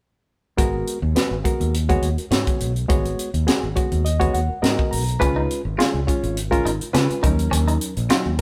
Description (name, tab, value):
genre	electric jazz fusion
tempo	104 BPM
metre	4/4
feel	swing 53% on 16ths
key	unclear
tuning	A4 = 440 Hz
part	barky reed electric piano	accompaniment	0.6-8.4 s	Gb3 to Bb5	-26 LUFS	equal	overdrive
part	fretless electric bass	bass	0.6-8.4 s	Ab1 to Db3	-25 LUFS	equal	none
part	crisp fusion drum kit	drums	0.6-8.4 s	hi-hat, kick drum, snare drum	-25 LUFS	equal	none
part	clean electric guitar	stabs	5.2-8.3 s	Db4 to F4	-29 LUFS	equal	none
room	light reverb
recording	band playing live in one room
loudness	-21 LUFS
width	mono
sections	0.6-8.4 A section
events	reed electric piano fill 3.5-5.2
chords	0.6 Abm9; 5.2 Db7; 7.2 Ebm7